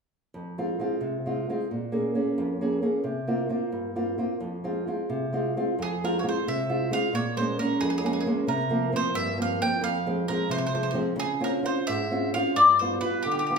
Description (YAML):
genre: italian folk, Italian serenade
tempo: 88 BPM (dotted quarters)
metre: 6/8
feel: straight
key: F harmonic minor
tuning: A4 = 443 Hz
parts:
  - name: nylon-string guitar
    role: accompaniment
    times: 0.3-13.6 s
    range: F2 to Ab4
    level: -26 LUFS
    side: equal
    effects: none
  - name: bowl-back mandolin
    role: melody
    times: 5.8-13.6 s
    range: G4 to G5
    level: -26 LUFS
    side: left 1 dB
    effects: none
room: wet large studio reverb, RT60 0.9 s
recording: band playing live in one room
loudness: -24 LUFS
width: side -5 dB against mid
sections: 0.3-5.8 A section; 5.8-13.6 B section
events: none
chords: 0.3 Fm; 1.7 Bbm7; 3.0 C7sus4; 4.4 Fm; 7.1 Bbm7; 8.5 C7sus4; 9.8 Fm; 11.2 Dbmaj7; 12.6 G7